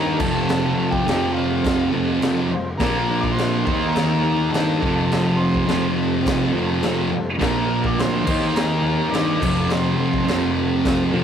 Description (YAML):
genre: garage rock duo or trio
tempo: 104 BPM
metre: 4/4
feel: straight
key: unclear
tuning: A4 = 444 Hz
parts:
  - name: overdriven combo organ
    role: melody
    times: 0.0-10.5 s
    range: F4 to D5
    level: -27 LUFS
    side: equal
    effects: none
  - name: combo organ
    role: sustained chords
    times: 0.0-11.2 s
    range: C4 to C5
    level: -32 LUFS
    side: left 1 dB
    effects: none
  - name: thick fuzz guitar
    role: riff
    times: 0.0-11.2 s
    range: F2 to Eb4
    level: -20 LUFS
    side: right 1 dB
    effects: distortion
  - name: fuzz picked electric bass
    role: bass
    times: 0.0-11.2 s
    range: F1 to G2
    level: -28 LUFS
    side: left 1 dB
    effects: overdrive
  - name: raw garage drum kit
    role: drums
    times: 0.2-11.0 s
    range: crash cymbal, kick drum, snare drum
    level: -25 LUFS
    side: equal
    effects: none
room: moderate studio reverb, RT60 0.5 s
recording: rough rehearsal-room recording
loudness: -18 LUFS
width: side -8 dB against mid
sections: 0.0-11.2 A section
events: none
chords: 0.2 F; 2.8 Bb; 3.7 Eb; 4.8 F; 7.4 Bb; 8.3 Eb; 9.4 F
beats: | 0.48 1.06 1.64 2.22 | 2.80 3.38 3.95 4.53 | 5.11 5.68 6.26 6.83 | 7.41 7.98 8.56 9.13 | 9.71 10.28 10.86